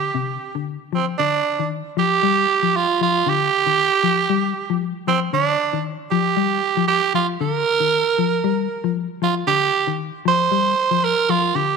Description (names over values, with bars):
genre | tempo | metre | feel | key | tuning
afrobeat | 116 BPM | 4/4 | swing 55% on 16ths | G minor | A4 = 440 Hz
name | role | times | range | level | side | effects
raspy tenor saxophone | melody | 0.0-11.8 s | C4 to C5 | -18 LUFS | right 7 dB | slapback echo
mellow electric guitar | arpeggios | 0.0-11.8 s | C3 to G3 | -23 LUFS | left 14 dB | none
room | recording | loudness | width
moderate echo chamber reverb, RT60 2.2 s | 1960s-style stereo with parts hard left and right | -17 LUFS | side -5 dB against mid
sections
0.0-1.2 A section; 1.2-11.8 B section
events
none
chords
0.0 G5; 1.2 G7(no3)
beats
0.14 0.66 | 1.18 1.71 2.23 2.75 | 3.26 3.78 4.30 4.82 | 5.34 5.86 6.38 6.90 | 7.42 7.93 8.45 8.97 | 9.49 10.00 10.52 11.04 | 11.55